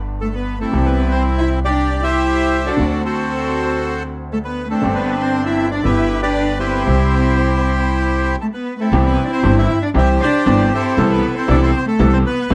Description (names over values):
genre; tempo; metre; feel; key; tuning
tango; 117 BPM; 4/4; rubato; C major; A4 = 442 Hz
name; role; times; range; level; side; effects
bright grand piano; accompaniment; 0.0-12.5 s; G1 to A4; -24 LUFS; equal; none
upright bass; bass; 0.0-12.5 s; G1 to D2; -21 LUFS; equal; none
bandoneon; melody; 0.2-12.5 s; C4 to E5; -22 LUFS; equal; plate reverb
warm cello; second line; 0.2-12.5 s; A3 to E4; -24 LUFS; equal; none
room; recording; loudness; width
moderate studio ambience, RT60 0.5 s; none; -17 LUFS; mono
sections
0.0-8.9 A section; 8.9-12.5 A section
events
stop 8.4-8.9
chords
0.0 G; 0.7 C; 2.8 D7; 4.8 Gsus4; 5.9 G; 6.9 C; 11.0 Amadd9/C